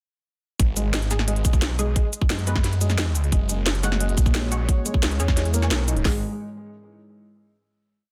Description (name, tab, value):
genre	dark technical drum and bass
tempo	176 BPM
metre	4/4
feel	straight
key	G# minor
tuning	A4 = 440 Hz
part	snarling distorted saw bass	bass	0.6-6.2 s	F#1 to F#2	-26 LUFS	equal	distortion, overdrive
part	drum and bass drum kit	drums	0.6-6.1 s	hi-hat, kick drum, snare drum	-23 LUFS	equal	none
part	drum and bass drum kit	drums	0.6-6.0 s	cabasa, hi-hat, snare drum	-29 LUFS	equal	none
part	felt-muted upright piano	arpeggios	0.8-6.2 s	G#3 to D#4	-35 LUFS	equal	sidechain pumping, delay
part	filtered dub chord stab	stabs	1.1-6.2 s	G#3 to F#5	-36 LUFS	equal	phaser, lush chorus, delay
part	dark analog pad	sustained chords	3.8-6.2 s	G#3 to C#5	-35 LUFS	equal	chorus, sidechain pumping
room	digital ambience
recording	dense, heavily limited modern master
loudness	-22 LUFS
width	mono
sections	0.6-6.0 drop; 6.0-7.4 final chord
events	drop 0.6-6.0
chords	0.6 G#m; 2.0 N.C.; 3.3 F#; 4.7 C#m; 6.0 G#m